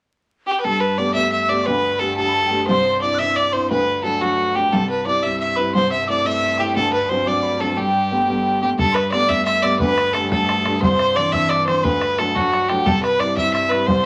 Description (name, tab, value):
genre	celtic folk, Celtic jig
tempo	118 BPM (dotted quarters)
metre	6/8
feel	straight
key	G major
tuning	A4 = 438 Hz
part	rich fiddle	melody	0.5-14.1 s	F#4 to E5	-21 LUFS	equal	none
part	mellow hollow tin whistle	second line	0.6-14.1 s	F#5 to F#6	-28 LUFS	equal	none
part	dark upright piano	accompaniment	0.6-14.1 s	C2 to G4	-25 LUFS	equal	none
part	bright cello	drone	0.6-14.1 s	G2	-34 LUFS	equal	none
part	bodhran	percussion	8.8-14.0 s	none	-29 LUFS	equal	none
room	wet studio ambience, RT60 0.5 s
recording	vinyl crackle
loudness	-19 LUFS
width	mono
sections	0.6-8.8 A section; 8.8-14.1 A section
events	none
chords	0.0 N.C.; 0.6 Gadd9; 1.7 Dsus4; 2.7 Cadd9; 3.7 D; 4.7 C; 5.7 Am/C; 6.8 D7; 7.8 Gadd9; 9.8 Dsus4; 10.8 Cadd9; 11.8 D; 12.9 C